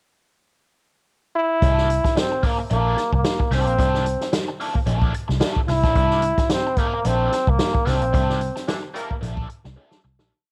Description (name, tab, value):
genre	funk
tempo	111 BPM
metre	4/4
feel	swing 56% on 16ths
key	C mixolydian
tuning	A4 = 440 Hz
part	bright trombone	melody	1.4-8.7 s	Bb3 to E4	-24 LUFS	equal	cassette tape
part	crunchy overdriven guitar	accompaniment	1.6-10.3 s	Bb3 to Bb4	-32 LUFS	equal	wah, cassette tape
part	vintage muted fingered electric bass	bass	1.6-10.3 s	Bb1 to C2	-25 LUFS	equal	none
part	swinging big-band drum kit	drums	1.6-10.3 s	hi-hat, kick drum, snare drum	-25 LUFS	equal	cassette tape
part	clear horn section	second line	8.7-9.1 s	E3 to Bb4	-35 LUFS	equal	cassette tape
room	light reverb, studio reverb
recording	home recording on cassette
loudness	-21 LUFS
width	mono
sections	0.0-1.6 pickup bar; 1.6-10.3 groove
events	fade-out 8.1-10.3; band accent 8.1-10.3; drum fill 9.8-10.3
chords	0.0 N.C.; 1.6 C13